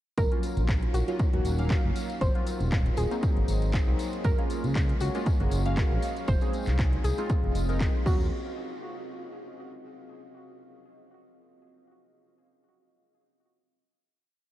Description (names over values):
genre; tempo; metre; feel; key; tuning
deep house; 118 BPM; 4/4; swing 55% on 16ths; Eb dorian; A4 = 441 Hz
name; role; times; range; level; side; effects
soft round pluck; melody; 0.2-8.3 s; Gb4 to C5; -37 LUFS; equal; chorus, cassette tape, tape echo
deep dark ambient pad; sustained chords; 0.9-8.3 s; Gb3 to F5; -40 LUFS; equal; chorus, built-in reverb, sidechain pumping
smooth gliding synth bass; bass; 0.2-8.3 s; Eb1 to Db2; -28 LUFS; equal; sidechain pumping
electronic kick drum; drums; 0.2-8.2 s; none; -27 LUFS; equal; overdrive
house drum kit; drums; 0.2-8.2 s; crash cymbal, handclaps, hi-hat; -41 LUFS; equal; overdrive
tambourine; percussion; 0.2-8.3 s; none; -48 LUFS; left 4 dB; none
warm analog keys; stabs; 0.3-8.3 s; Gb3 to F5; -34 LUFS; equal; chorus, phaser, vintage 12-bit sampler grit, sidechain pumping, analog delay
room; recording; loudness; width
light reverb, digital ambience; cassette tape; -24 LUFS; side -14 dB against mid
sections
0.2-8.3 drop; 8.3-10.3 final hit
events
drop 0.2-8.3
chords
0.2 Ebm9; 2.2 Ab9; 4.2 Gbmaj9; 6.3 Fm7; 8.1 Ebm9; 8.3 N.C.